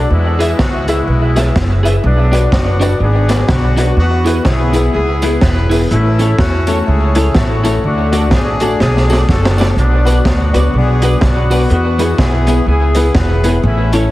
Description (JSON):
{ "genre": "ska", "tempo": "124 BPM", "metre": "4/4", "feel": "swing 60% on 8ths", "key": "E mixolydian", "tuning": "A4 = 440 Hz", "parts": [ { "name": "warm horn section", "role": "melody", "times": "0.0-14.1 s", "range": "F#3 to B4", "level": "-18 LUFS", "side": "left 2 dB", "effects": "dub echo" }, { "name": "electric guitar at the edge of break-up", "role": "accompaniment", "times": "0.0-14.0 s", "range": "B3 to E5", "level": "-21 LUFS", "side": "right 1 dB", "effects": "ensemble chorus, dub echo" }, { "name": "clear upright piano", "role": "stabs", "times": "0.0-14.1 s", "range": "A3 to E5", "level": "-20 LUFS", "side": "left 3 dB", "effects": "dub echo" }, { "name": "upright bass", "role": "bass", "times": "0.0-14.0 s", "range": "E1 to E2", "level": "-13 LUFS", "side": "equal", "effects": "none" }, { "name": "crunchy breakbeat drum kit", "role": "drums", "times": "0.4-14.0 s", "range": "hi-hat, kick drum, snare drum", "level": "-17 LUFS", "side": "equal", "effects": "dub echo" }, { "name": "tambourine", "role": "percussion", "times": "0.4-14.0 s", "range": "none", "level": "-36 LUFS", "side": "right 4 dB", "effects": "dub echo" } ], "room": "light reverb, small room ambience", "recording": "heavily compressed radio sound", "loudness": "-10 LUFS", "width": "side -16 dB against mid", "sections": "0.0-2.0 A section; 2.0-14.1 B section", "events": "drum fill 8.8-9.8", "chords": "0.1 E; 2.0 Bm; 4.0 E; 5.9 A; 7.8 D; 9.8 Bm; 11.7 E", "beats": "| 0.11 0.59 1.07 1.55 | 2.04 2.52 3.00 3.49 | 3.97 4.45 4.94 5.42 | 5.90 6.39 6.87 7.35 | 7.84 8.32 8.80 9.29 | 9.77 10.26 10.74 11.22 | 11.71 12.19 12.67 13.16 | 13.64" }